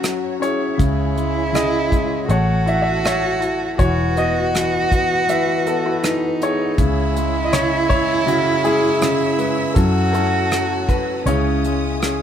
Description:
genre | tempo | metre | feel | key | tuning
acoustic folk-pop ballad | 80 BPM | 4/4 | straight | C# minor | A4 = 440 Hz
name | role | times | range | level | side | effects
clear baby grand piano | melody | 0.0-12.2 s | C#3 to F#5 | -20 LUFS | left 2 dB | none
warm cello | second line | 0.0-12.2 s | C#4 to F#4 | -21 LUFS | right 3 dB | none
warm symphonic string section | sustained chords | 0.0-12.2 s | E4 to E6 | -31 LUFS | equal | none
vintage muted fingered electric bass | bass | 0.0-12.2 s | E1 to F#2 | -22 LUFS | equal | none
soft brush drum kit | drums | 0.0-12.2 s | hi-hat, kick drum, rim click | -20 LUFS | equal | none
room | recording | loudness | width
moderate studio reverb, RT60 0.8 s | none | -16 LUFS | side -9 dB against mid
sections
0.0-12.2 A section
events
none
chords
0.0 F#5; 0.8 C#m; 2.3 A6; 3.8 Esus2; 6.8 C#m; 9.8 F#m7; 11.3 C#madd9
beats
0.03 | 0.78 1.54 2.29 3.04 | 3.79 4.54 5.28 6.03 | 6.78 7.52 8.27 9.01 | 9.76 10.51 11.26 12.01

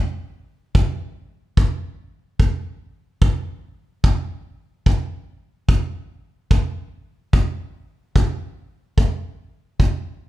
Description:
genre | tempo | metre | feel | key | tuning
blues | 73 BPM | 4/4 | swing 61% on 8ths | none | none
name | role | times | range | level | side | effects
kick drum | drums | 0.7-10.0 s | none | -17 LUFS | equal | none
room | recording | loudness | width
light reverb | none | -19 LUFS | side -15 dB against mid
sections
0.0-10.3 A section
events
none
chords
none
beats
0.75 1.57 | 2.39 3.22 4.04 4.86 | 5.68 6.50 7.33 8.15 | 8.97 9.79

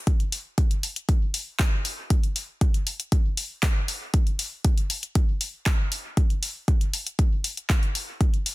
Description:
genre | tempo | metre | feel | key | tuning
techno | 118 BPM | 4/4 | straight | none | none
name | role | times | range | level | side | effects
deep house drum kit | drums | 0.1-8.5 s | handclaps, hi-hat | -28 LUFS | left 1 dB | none
electronic kick drum | drums | 0.1-8.3 s | none | -22 LUFS | equal | none
room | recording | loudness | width
little or no reverb | dense, heavily limited modern master | -23 LUFS | side -19 dB against mid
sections
0.1-8.5 A section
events
none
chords
none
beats
| 0.07 0.58 1.09 1.60 | 2.10 2.61 3.12 3.63 | 4.14 4.65 5.16 5.66 | 6.17 6.68 7.19 7.70 | 8.21

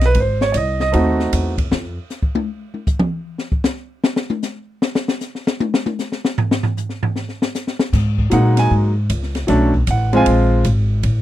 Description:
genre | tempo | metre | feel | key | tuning
jazz, small-group swing and bop | 154 BPM | 4/4 | swing 65% on 8ths | unclear | A4 = 441 Hz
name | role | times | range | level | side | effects
warm baby grand piano | accompaniment | 0.0-1.5, 8.3-10.6 s | E#3 to G#5 | -16 LUFS | right 1 dB | none
upright bass | bass | 0.0-2.0, 7.9-11.2 s | G#1 to A#2 | -17 LUFS | equal | none
open jazz drum kit | drums | 0.0-11.2 s | crash cymbal, hi-hat, kick drum, ride cymbal, snare drum, toms | -20 LUFS | left 2 dB | none
room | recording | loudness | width
little or no reverb | dry, close 1970s-style studio recording | -16 LUFS | side -14 dB against mid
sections
0.0-7.9 A section; 7.9-11.2 A section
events
drum solo 1.7-7.9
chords
0.2 G#7b9; 1.7 N.C.; 7.9 G#sus2; 9.5 Bm9; 10.3 A#sus2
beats
| 0.15 0.54 0.93 1.32 | 1.71 2.10 2.49 2.88 | 3.27 3.66 4.05 4.44 | 4.83 5.21 5.60 5.99 | 6.38 6.77 7.16 7.55 | 7.93 8.32 8.71 9.10 | 9.49 9.88 10.27 10.65 | 11.04

